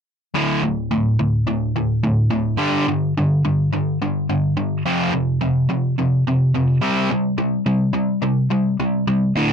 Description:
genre	rock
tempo	106 BPM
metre	4/4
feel	straight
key	D minor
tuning	A4 = 440 Hz
part	overdriven electric guitar	solo	0.3-9.5 s	D2 to C4	-17 LUFS	equal	none
room	light reverb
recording	dry, close 1970s-style studio recording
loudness	-17 LUFS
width	side -7 dB against mid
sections	0.3-9.5 A section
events	none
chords	0.3 D5; 2.6 G5; 4.9 F5; 6.8 C5

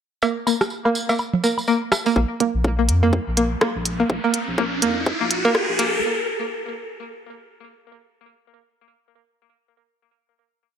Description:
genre	minimal techno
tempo	124 BPM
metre	4/4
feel	swing 59% on 16ths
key	unclear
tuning	A4 = 440 Hz
part	string-like resonator pluck	riff	0.2-5.8 s	Bb3	-22 LUFS	right 1 dB	chorus, sidechain pumping, tape echo
part	electronic cowbell, woodblock, rim click and congas	percussion	0.2-2.0 s	none	-22 LUFS	right 1 dB	digital delay
part	tambourine	percussion	0.2-2.1 s	none	-29 LUFS	right 3 dB	none
part	round analog bass	bass	2.2-6.0 s	Bb1 to F2	-23 LUFS	equal	sidechain pumping
part	electronic kick drum	drums	2.2-5.7 s	none	-23 LUFS	equal	high-pass filter on kick
part	riser	sound effects	3.5-6.0 s	none	-26 LUFS	equal	none
part	minimal click drum kit	drums	2.4-5.9 s	hi-hat, rim click	-22 LUFS	equal	overdrive, low-pass filter on hats, low-pass filter on snare
room	moderate digital room reverb, RT60 1.0 s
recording	high-pass filter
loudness	-18 LUFS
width	side -8 dB against mid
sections	0.2-2.2 intro; 2.2-6.0 build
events	filter sweep on synth pluck 0.2-2.2, 2.2-6.0; build-up 2.2-6.0; filter sweep 2.2-6.0; riser 3.5-6.0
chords	0.2 N.C.; 2.2 Bb5

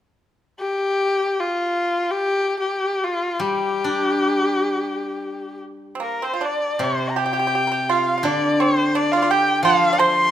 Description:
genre	chinese traditional, Chinese chamber ensemble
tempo	free time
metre	none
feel	none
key	G yu mode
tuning	A4 = 441 Hz
part	clear erhu	melody	0.6-10.3 s	F4 to C6	-21 LUFS	left 2 dB	none
part	steel-string zither	accompaniment	3.4-10.3 s	C3 to D4	-24 LUFS	left 1 dB	none
part	pipa	second line	6.0-10.3 s	Bb3 to D5	-21 LUFS	right 5 dB	none
room	moderate recital hall reverb, RT60 1.7 s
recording	minimal, uncompressed stereo recording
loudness	-18 LUFS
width	side -11 dB against mid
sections	0.0-6.8 A section; 6.8-10.3 B section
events	none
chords	none

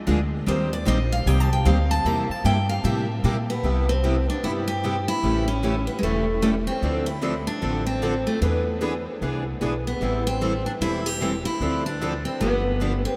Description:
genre	acoustic string swing (jazz manouche)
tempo	151 BPM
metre	4/4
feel	swing 62% on 8ths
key	C major from 3.6 s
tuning	A4 = 440 Hz
part	picked steel-string acoustic guitar	accompaniment	0.1-12.9 s	C3 to C5	-30 LUFS	equal	none
part	picked steel-string acoustic guitar	accompaniment	0.1-12.9 s	C3 to C5	-34 LUFS	equal	none
part	upright bass	bass	0.1-13.0 s	E1 to Bb2	-28 LUFS	equal	none
part	picked steel-string acoustic guitar	melody	0.5-13.2 s	Ab3 to Bb5	-28 LUFS	equal	none
room	wet huge ambient reverb, RT60 7.7 s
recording	in a vast, echoing space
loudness	-24 LUFS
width	mono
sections	0.0-3.6 A section; 3.6-13.2 B section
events	steel-string acoustic guitar solo 0.0-3.6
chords	0.5 Eb6; 2.1 C7; 3.6 Cmaj7; 5.2 A7; 6.8 Dm9; 8.4 E7; 10.0 Am7; 11.6 Dm7; 12.4 G7

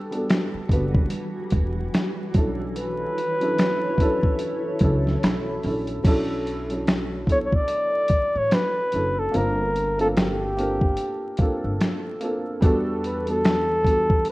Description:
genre	lo-fi hip hop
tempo	73 BPM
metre	4/4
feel	swing 59% on 16ths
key	B minor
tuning	A4 = 440 Hz
part	felt-muted upright piano	accompaniment	0.0-14.3 s	F#3 to B5	-27 LUFS	right 1 dB	cassette tape, low-pass filter
part	granular cloud pad	sustained chords	0.2-6.0 s	E3 to C#5	-33 LUFS	equal	built-in reverb, low-pass filter
part	lo-fi sampler-style drum kit	drums	0.1-14.3 s	crash cymbal, finger snaps, hi-hat, kick drum, snare drum	-22 LUFS	equal	none
part	upright bass	bass	0.5-14.2 s	E1 to E2	-28 LUFS	equal	none
part	warm flugelhorn	melody	2.8-14.3 s	G4 to D5	-23 LUFS	equal	low-pass filter
room	light reverb, small room reverb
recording	rough home demo mix, vinyl crackle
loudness	-20 LUFS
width	side -20 dB against mid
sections	0.0-6.0 A section; 6.0-14.3 B section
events	break 0.0-2.8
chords	0.0 Em11; 2.4 Bm11; 9.3 Gm11; 12.6 Em11

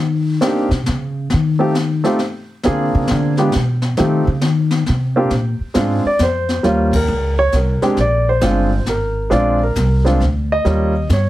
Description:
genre	jazz piano trio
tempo	135 BPM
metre	3/4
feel	swing 66% on 8ths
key	Bb mixolydian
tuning	A4 = 438 Hz
part	upright bass	bass	0.0-11.3 s	G1 to Eb3	-17 LUFS	equal	none
part	warm grand piano	melody	0.4-11.3 s	G3 to Eb5	-17 LUFS	right 1 dB	none
part	jazz brush drum kit	drums	0.4-11.3 s	brushed snare drum, crash cymbal, hi-hat, kick drum, snare drum	-24 LUFS	left 2 dB	none
room	light reverb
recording	heavily compressed radio sound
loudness	-14 LUFS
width	side -15 dB against mid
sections	0.0-5.3 A section; 5.3-11.3 B section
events	upright bass solo 0.0-5.3; band accent 6.9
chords	0.0 Cm7; 1.3 F7 (rootless); 2.6 Bb9; 3.5 N.C.; 4.0 F7sus2; 5.3 Bb9; 6.6 Eb7; 8.0 Bb9; 10.7 Eb9

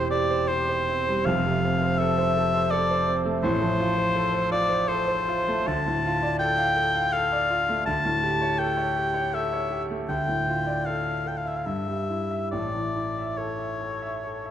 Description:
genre	classical, romantic duo for oboe and grand piano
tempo	67-85 BPM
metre	3/4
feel	rubato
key	F major, D minor from 5.7 s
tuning	A4 = 440 Hz
part	clear oboe	melody	0.0-14.5 s	C5 to A5	-25 LUFS	left 2 dB	none
part	bright concert grand piano	accompaniment	0.0-14.5 s	E1 to F5	-26 LUFS	right 2 dB	none
room	wet recital hall reverb, RT60 1.4 s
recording	dark, warm production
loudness	-23 LUFS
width	side -10 dB against mid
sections	0.0-14.5 A section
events	none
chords	0.0 C/E; 1.3 F; 3.4 F/A; 5.7 Dm; 7.9 A7/D; 10.1 Dm; 11.7 Em/G; 12.5 A

